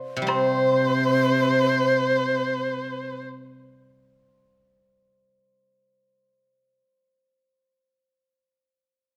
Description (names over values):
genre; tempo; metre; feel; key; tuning
chinese traditional, Chinese chamber ensemble; free time; none; none; unclear; A4 = 440 Hz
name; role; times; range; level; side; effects
hammered dulcimer; second line; 0.0-3.2 s; C5 to F5; -31 LUFS; equal; none
guzheng; accompaniment; 0.2-6.8 s; C3 to C4; -32 LUFS; equal; none
warm erhu; melody; 0.3-3.2 s; C5; -27 LUFS; equal; none
breathy mellow low xiao; second line; 0.3-3.3 s; C5; -29 LUFS; equal; none
dark cello; second line; 0.3-3.2 s; C3; -29 LUFS; equal; none
woodblock; percussion; 0.3-0.7 s; none; -34 LUFS; equal; none
room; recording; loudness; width
wet recital hall reverb, RT60 1.5 s; none; -22 LUFS; mono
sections
0.3-4.1 A section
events
none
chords
none